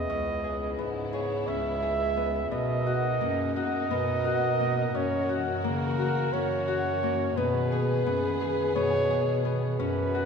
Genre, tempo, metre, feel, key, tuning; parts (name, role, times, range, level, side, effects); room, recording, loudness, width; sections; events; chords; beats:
contemporary instrumental, chamber music in an uneven meter; 173 BPM (eighths); 7/8; straight; A4 = 442 Hz
warm flugelhorn; melody; 0.0-10.3 s; A#4 to E5; -30 LUFS; right 4 dB
Celtic harp; arpeggios; 0.0-10.3 s; A#3 to G#4; -30 LUFS; left 4 dB
mellow bass clarinet; bass; 0.0-10.3 s; C#2 to C#3; -30 LUFS; equal
warm studio string section; sustained chords; 0.1-10.3 s; B2 to A#4; -36 LUFS; left 2 dB
wet church reverb, RT60 4.0 s; recorded in a church or concert hall; -25 LUFS; side -6 dB against mid
0.0-9.8 A section
0.1 C#m7; 2.5 Bmaj7; 4.9 F#7; 7.4 B6
| 0.10 0.45 0.79 1.14 1.48 1.83 2.17 | 2.52 2.87 3.21 3.56 3.91 4.25 4.60 | 4.95 5.29 5.64 5.99 6.33 6.68 7.03 | 7.37 7.72 8.06 8.41 8.76 9.10 9.45 | 9.80 10.14